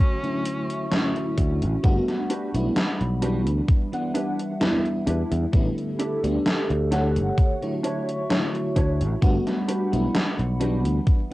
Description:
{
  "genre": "vaporwave",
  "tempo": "65 BPM",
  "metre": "4/4",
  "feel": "straight",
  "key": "G lydian",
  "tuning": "A4 = 440 Hz",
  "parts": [
    { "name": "edgy tenor saxophone", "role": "melody", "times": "0.0-1.4 s", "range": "C#4", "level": "-36 LUFS", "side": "equal", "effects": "vintage 12-bit sampler grit, cassette tape, tape echo, plate reverb" },
    { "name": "FM electric piano with soft pad layer", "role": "accompaniment", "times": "0.0-11.3 s", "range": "D3 to F#5", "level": "-27 LUFS", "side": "equal", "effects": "tremolo, ensemble chorus, cassette tape, analog delay" },
    { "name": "warbly tape-like pad", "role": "sustained chords", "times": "0.3-11.3 s", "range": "G3 to C#6", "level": "-32 LUFS", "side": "equal", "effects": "chorus, built-in reverb, cassette tape" },
    { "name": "gated 80s digital drum machine", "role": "drums", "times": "0.2-11.3 s", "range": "hi-hat, snare drum", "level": "-26 LUFS", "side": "equal", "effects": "gated reverb, gated reverb snare, overdrive, cassette tape" },
    { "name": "fingered electric bass", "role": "bass", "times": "1.4-11.0 s", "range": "G1 to E2", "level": "-24 LUFS", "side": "equal", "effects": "tube saturation" },
    { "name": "electronic kick drum", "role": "drums", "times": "1.4-11.3 s", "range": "none", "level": "-20 LUFS", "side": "equal", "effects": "overdrive, cassette tape" },
    { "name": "mellow electric guitar", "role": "riff", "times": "2.3-10.9 s", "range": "D4 to C#5", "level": "-30 LUFS", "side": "right 1 dB", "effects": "ensemble chorus, cassette tape, analog delay" }
  ],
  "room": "light reverb",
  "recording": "home recording on cassette",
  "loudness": "-21 LUFS",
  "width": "side -18 dB against mid",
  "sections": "0.0-1.8 A section; 1.8-11.3 B section",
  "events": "band accent 0.9-1.4",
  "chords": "0.0 Dmaj9; 1.8 Gmaj7; 3.7 Em7; 5.5 A7sus4; 7.4 Dmaj9; 9.2 Gmaj7"
}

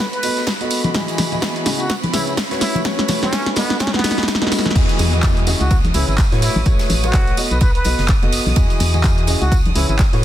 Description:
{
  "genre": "piano house",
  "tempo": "126 BPM",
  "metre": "4/4",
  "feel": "swing 58% on 16ths",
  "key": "E major",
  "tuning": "A4 = 439 Hz",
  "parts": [
    { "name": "trumpet with plunger mute", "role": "melody", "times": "0.0-10.0 s", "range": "B3 to B4", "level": "-26 LUFS", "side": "equal", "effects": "low-pass filter, digital delay" },
    { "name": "rich chamber violin section", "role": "sustained chords", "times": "0.0-10.2 s", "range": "B5 to D#6", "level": "-30 LUFS", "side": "right 2 dB", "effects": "sidechain pumping" },
    { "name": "huge arena drum kit", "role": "drums", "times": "0.0-10.2 s", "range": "ride cymbal, snare drum", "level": "-30 LUFS", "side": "right 2 dB", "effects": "sidechain pumping on cymbals, high-pass filter on cymbals, high-pass filter on snare, high-pass filter on room" },
    { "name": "tambourine and congas", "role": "percussion", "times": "0.0-10.1 s", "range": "none", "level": "-27 LUFS", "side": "left 2 dB", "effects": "none" },
    { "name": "riser and downlifter", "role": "sound effects", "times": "0.0-8.6 s", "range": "none", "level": "-29 LUFS", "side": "right 1 dB", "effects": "none" },
    { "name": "punchy analog drum machine", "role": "drums", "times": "0.1-10.2 s", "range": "crash cymbal, handclaps, hi-hat, snare drum", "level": "-21 LUFS", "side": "equal", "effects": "none" },
    { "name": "warm concert grand piano", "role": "riff", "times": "0.2-10.2 s", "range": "C#3 to D#5", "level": "-24 LUFS", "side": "left 1 dB", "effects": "sidechain pumping, low-pass filter, digital delay" },
    { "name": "electronic kick drum", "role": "drums", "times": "0.5-10.1 s", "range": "none", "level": "-17 LUFS", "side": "equal", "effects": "high-pass filter on kick" },
    { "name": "organ-like FM bass", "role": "bass", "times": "4.8-10.2 s", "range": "F#1 to A2", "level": "-19 LUFS", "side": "equal", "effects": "sidechain pumping" }
  ],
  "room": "light reverb, small room ambience",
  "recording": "dense, heavily limited modern master",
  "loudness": "-14 LUFS",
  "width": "side -12 dB against mid",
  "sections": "0.0-4.8 A section; 4.8-10.2 B section",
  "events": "build-up 0.0-4.8; drum fill 0.0-4.8; drop 4.8-10.2",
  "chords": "0.0 B7; 0.9 Emaj9; 1.9 C#m7; 2.6 A69; 3.6 B7; 4.8 Emaj9; 5.7 C#m7; 6.4 A69; 7.4 B7; 8.6 Emaj9; 9.5 C#m7"
}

